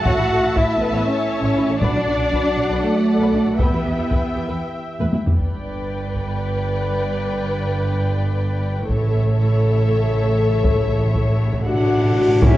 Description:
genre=cinematic, epic orchestral film score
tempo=238 BPM (eighths)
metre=7/8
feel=straight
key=A mixolydian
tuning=A4 = 440 Hz
part: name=rich symphonic violin section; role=melody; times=0.0-12.2 s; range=E5 to A5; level=-34 LUFS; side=left 4 dB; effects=none
part: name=warm symphonic violin section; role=second line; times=0.0-12.6 s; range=A4 to F#5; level=-28 LUFS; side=left 4 dB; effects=none
part: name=warm symphonic viola section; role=accompaniment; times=0.0-12.6 s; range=A3 to E5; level=-27 LUFS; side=equal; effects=none
part: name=mellow French horn section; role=sustained chords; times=0.0-12.6 s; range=C#3 to B4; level=-25 LUFS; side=left 3 dB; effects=none
part: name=rich studio double bass section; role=bass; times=0.0-12.5 s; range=G1 to E2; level=-24 LUFS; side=right 2 dB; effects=none
part: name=rich symphonic cello section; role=bass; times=0.0-12.5 s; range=G2 to F#4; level=-22 LUFS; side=right 2 dB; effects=none
part: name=taiko ensemble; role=drums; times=0.1-12.6 s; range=none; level=-21 LUFS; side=equal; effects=none
part: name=cymbal swell and tam-tam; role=percussion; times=8.9-12.6 s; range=none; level=-29 LUFS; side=left 1 dB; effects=none
part: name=timpani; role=percussion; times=8.9-12.4 s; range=A2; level=-25 LUFS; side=equal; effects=none
part: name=cymbal swell and impact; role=sound effects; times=11.7-12.6 s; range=none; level=-30 LUFS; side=equal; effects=none
part: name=warm trumpet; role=stabs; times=11.7-12.6 s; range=C#4 to D4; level=-23 LUFS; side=right 2 dB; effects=none
room=moderate scoring stage reverb, RT60 1.4 s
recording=worn, warbling old tape, cassette tape, warbly pitch drift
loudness=-17 LUFS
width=side -15 dB against mid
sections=0.0-5.4 A section; 5.4-12.4 B section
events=drum fill 5.0-5.4; timpani fill 8.9-12.4; cymbal swell 11.7-12.4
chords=0.1 A; 1.8 Bm; 3.6 Em; 5.4 G; 8.9 A

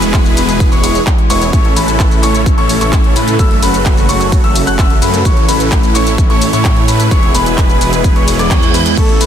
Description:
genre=EDM, festival progressive house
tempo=129 BPM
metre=4/4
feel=straight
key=A major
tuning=A4 = 440 Hz
part: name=lush unison pad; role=sustained chords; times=0.0-9.3 s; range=B2 to F#4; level=-20 LUFS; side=equal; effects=chorus, sidechain pumping
part: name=clear grand piano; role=arpeggios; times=0.0-9.3 s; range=B5 to F#6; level=-19 LUFS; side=left 4 dB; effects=sidechain pumping, ping-pong delay
part: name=supersaw chords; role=riff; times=0.0-9.3 s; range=G#3 to F#5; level=-16 LUFS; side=right 1 dB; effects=phaser, sidechain pumping, ping-pong delay
part: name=wide detuned saw bass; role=bass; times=0.0-9.3 s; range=E1 to A2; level=-17 LUFS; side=equal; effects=chorus, sidechain pumping
part: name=big-room dance drum kit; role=drums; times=0.0-9.3 s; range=crash cymbal, handclaps, hi-hat, rim click, shaker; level=-20 LUFS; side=left 1 dB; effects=none
part: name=electronic kick drum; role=drums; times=0.1-9.1 s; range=none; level=-12 LUFS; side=equal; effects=none
part: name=reverse cymbal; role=sound effects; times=8.3-9.0 s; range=none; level=-19 LUFS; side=right 7 dB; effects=none
part: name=breathy flute-like synth lead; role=melody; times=9.0-9.3 s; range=A4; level=-17 LUFS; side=left 1 dB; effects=chorus
room=digital ambience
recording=dense, heavily limited modern master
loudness=-9 LUFS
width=side -9 dB against mid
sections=0.0-9.3 A section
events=reverse cymbal 8.3-9.0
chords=0.0 E; 1.5 A; 3.4 F#m; 5.3 A; 7.1 E

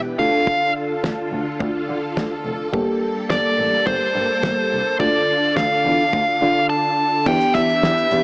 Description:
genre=synth-pop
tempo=106 BPM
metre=4/4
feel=straight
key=D minor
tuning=A4 = 440 Hz
part: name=mellow FM electric piano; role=accompaniment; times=0.0-8.2 s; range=Bb3 to A4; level=-24 LUFS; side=equal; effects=chorus
part: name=string machine, violins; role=sustained chords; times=0.0-8.2 s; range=D3 to A4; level=-25 LUFS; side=equal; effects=ensemble chorus
part: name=dark smooth lead guitar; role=melody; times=0.2-8.2 s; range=C5 to A5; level=-18 LUFS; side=equal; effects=overdrive
part: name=muted double bass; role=bass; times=0.2-8.2 s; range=F1 to D3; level=-27 LUFS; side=equal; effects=none
part: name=damped 70s drum kit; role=drums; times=0.5-8.2 s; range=crash cymbal, hi-hat, kick drum, snare drum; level=-24 LUFS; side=equal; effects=none
room=moderate plate reverb, RT60 1.8 s, small room ambience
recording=small speaker sound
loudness=-16 LUFS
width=side -35 dB against mid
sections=0.0-7.3 A section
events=silent gap 6.7-7.3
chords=0.2 Dm; 2.7 Gmadd9; 5.0 Dm; 7.3 Em7

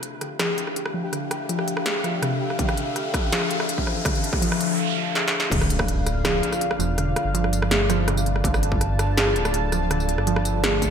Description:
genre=half-time drum and bass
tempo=164 BPM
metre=4/4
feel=half-time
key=D minor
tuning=A4 = 437 Hz
part: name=dark analog pad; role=sustained chords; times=0.0-10.9 s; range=D4 to A5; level=-29 LUFS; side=equal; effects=chorus, sidechain pumping
part: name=warbly dusty pluck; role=arpeggios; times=0.0-10.9 s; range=C3 to A3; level=-28 LUFS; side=equal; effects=chorus, digital delay
part: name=industrial drum kit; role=drums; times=0.0-10.9 s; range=crash cymbal, hi-hat, rim click, snare drum, tambourine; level=-25 LUFS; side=equal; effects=overdrive, high-pass filter on hats, high-pass filter on snare, high-pass filter on perc, high-pass filter on cymbals, high-pass filter on room, gated reverb
part: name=riser, noise sweep and impact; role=sound effects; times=0.9-7.0 s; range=none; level=-32 LUFS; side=equal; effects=none
part: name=pulsing gated texture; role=texture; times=0.0-10.9 s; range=F4 to G5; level=-34 LUFS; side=left 1 dB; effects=chorus, built-in reverb
part: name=electronic kick drum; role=drums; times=2.6-5.9, 8.4-10.9 s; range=none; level=-25 LUFS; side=equal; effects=distortion, overdrive
part: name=dark detuned saw bass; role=bass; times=5.5-10.9 s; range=D1 to G1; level=-24 LUFS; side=equal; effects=none
room=moderate lush hall reverb, RT60 1.7 s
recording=bright 1980s-style digital production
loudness=-20 LUFS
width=side -7 dB against mid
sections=0.0-5.5 A section; 5.5-10.9 B section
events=build-up 0.0-5.5; riser 0.9-4.8; noise sweep 4.1-5.5; drum fill 5.2-5.5; drop 5.5-10.9; impact 5.5-7.0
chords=0.0 Dm

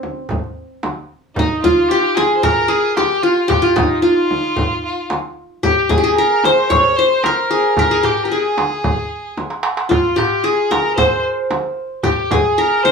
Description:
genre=Arabic maqam ensemble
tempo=112 BPM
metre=4/4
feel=straight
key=unclear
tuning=A4 = 440 Hz
part: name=qanun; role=melody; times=0.0-12.9 s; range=C4 to Db5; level=-15 LUFS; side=equal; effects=slapback echo
part: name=frame drum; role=percussion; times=0.0-12.9 s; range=none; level=-23 LUFS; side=left 1 dB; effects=none
part: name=darbuka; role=percussion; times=0.3-12.8 s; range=none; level=-23 LUFS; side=right 4 dB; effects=none
part: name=rich violin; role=second line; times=1.4-12.9 s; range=Eb4 to Db5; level=-21 LUFS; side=left 2 dB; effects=none
room=moderate studio reverb, RT60 0.5 s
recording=none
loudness=-14 LUFS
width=side -5 dB against mid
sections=0.0-1.4 A section; 1.4-12.9 B section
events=drum fill 9.4-9.9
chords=none

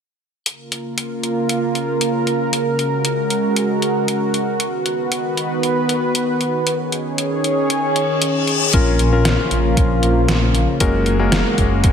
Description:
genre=synthwave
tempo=116 BPM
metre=4/4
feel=straight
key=Bb phrygian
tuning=A4 = 439 Hz
part: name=lush unison pad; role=sustained chords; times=0.7-11.9 s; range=Db3 to Db5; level=-18 LUFS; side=right 1 dB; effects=chorus, sidechain pumping
part: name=detuned 8-bit digital drum machine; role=drums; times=0.5-11.9 s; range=hi-hat, snare drum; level=-21 LUFS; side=left 1 dB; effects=overdrive, gated reverb
part: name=reverse cymbal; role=sound effects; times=8.0-8.7 s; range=none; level=-22 LUFS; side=left 6 dB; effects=none
part: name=warm electric grand piano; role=stabs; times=8.7-11.9 s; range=Ab3 to Bb4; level=-20 LUFS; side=left 4 dB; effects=ping-pong delay
part: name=dark detuned saw bass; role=bass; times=8.7-11.9 s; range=Gb1 to Bb1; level=-18 LUFS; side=equal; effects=tube saturation
part: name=electronic kick drum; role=drums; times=8.7-11.9 s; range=none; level=-16 LUFS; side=equal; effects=none
room=light reverb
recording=none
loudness=-16 LUFS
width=side -7 dB against mid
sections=0.5-8.7 A section; 8.7-11.9 B section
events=reverse cymbal 8.0-8.7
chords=0.5 Bbm; 2.5 Gbadd9; 4.6 B; 6.7 Absus4; 8.7 Bbm; 10.8 Gbadd9

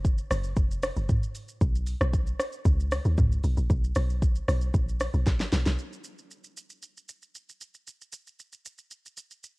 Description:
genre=amapiano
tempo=115 BPM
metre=4/4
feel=straight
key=unclear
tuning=A4 = 442 Hz
part: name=deep log drum bass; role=bass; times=0.0-5.8 s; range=E#1 to D#2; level=-26 LUFS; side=equal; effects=none
part: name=deep house drum kit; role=drums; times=0.0-9.6 s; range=hi-hat, kick drum, rim click, shaker, snare drum, toms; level=-27 LUFS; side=equal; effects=none
room=little or no reverb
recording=home recording on cassette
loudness=-24 LUFS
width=side -24 dB against mid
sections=0.0-5.8 A section; 5.8-9.6 B section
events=drop 0.0-5.8; drum fill 5.3-5.8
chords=none

